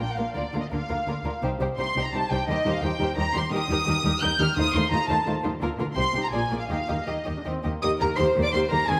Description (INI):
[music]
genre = quick classical-period movement for string orchestra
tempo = 170 BPM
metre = 3/4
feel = rubato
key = Eb major from 3.5 s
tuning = A4 = 440 Hz
[part]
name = rich studio violin section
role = melody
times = 0.0-9.0 s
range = D5 to G6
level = -29 LUFS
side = equal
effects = none
[part]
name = warm symphonic violin section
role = second line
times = 0.0-9.0 s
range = F4 to Eb5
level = -34 LUFS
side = equal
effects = none
[part]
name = dark symphonic viola section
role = accompaniment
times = 0.0-9.0 s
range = G3 to Ab4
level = -33 LUFS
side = equal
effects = none
[part]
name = dark symphonic double bass section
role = bass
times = 0.0-9.0 s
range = Bb1 to Eb2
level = -34 LUFS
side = equal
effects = none
[part]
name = warm symphonic cello section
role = bass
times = 0.0-9.0 s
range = Bb2 to Eb3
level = -34 LUFS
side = equal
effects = none
[sound]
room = moderate scoring stage reverb, RT60 1.9 s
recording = none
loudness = -25 LUFS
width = mono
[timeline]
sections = 0.0-7.8 A section; 7.8-9.0 B section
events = none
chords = 0.4 Bb/D; 1.4 Cm; 2.5 Cm/Eb; 4.6 F7/Eb; 5.6 Bb; 6.0 Cm; 6.3 Bb7; 6.7 Eb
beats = 0.00 | 0.35 0.71 1.07 | 1.42 1.78 2.13 | 2.48 2.83 3.17 | 3.52 3.87 4.21 | 4.56 4.91 5.26 | 5.61 5.96 6.33 | 6.70 7.08 7.46 | 7.83 8.19 8.54 | 8.89